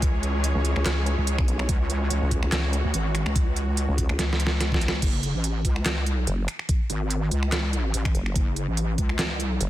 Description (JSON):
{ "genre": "heavy wobble dubstep", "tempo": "144 BPM", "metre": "4/4", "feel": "swing 54% on 16ths, half-time", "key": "F# minor", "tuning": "A4 = 441 Hz", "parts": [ { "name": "supersaw chords", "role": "sustained chords", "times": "0.0-5.0 s", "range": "E3 to C#5", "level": "-32 LUFS", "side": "right 1 dB", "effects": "sidechain pumping, low-pass filter" }, { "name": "wobble bass", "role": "bass", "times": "0.0-9.6 s", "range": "F#1 to D2", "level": "-25 LUFS", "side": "equal", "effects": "chorus, overdrive" }, { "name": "dubstep drum kit", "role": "drums", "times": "0.0-9.7 s", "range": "crash cymbal, finger snaps, handclaps, hi-hat, snare drum", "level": "-28 LUFS", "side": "right 1 dB", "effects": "none" }, { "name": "electronic kick drum", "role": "drums", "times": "0.0-9.1 s", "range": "none", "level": "-24 LUFS", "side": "equal", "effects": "overdrive" }, { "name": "vowel-sweep wobble bass", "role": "bass", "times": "0.6-9.7 s", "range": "F#1 to C#2", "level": "-24 LUFS", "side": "equal", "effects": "chorus, overdrive" } ], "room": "little or no reverb", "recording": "dense, heavily limited modern master", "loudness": "-22 LUFS", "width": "side -14 dB against mid", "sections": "0.0-5.0 A section; 5.0-9.7 A section", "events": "drop 0.0-5.0, 5.0-9.7; drum fill 4.2-5.0", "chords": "0.0 C#m; 5.0 F#m" }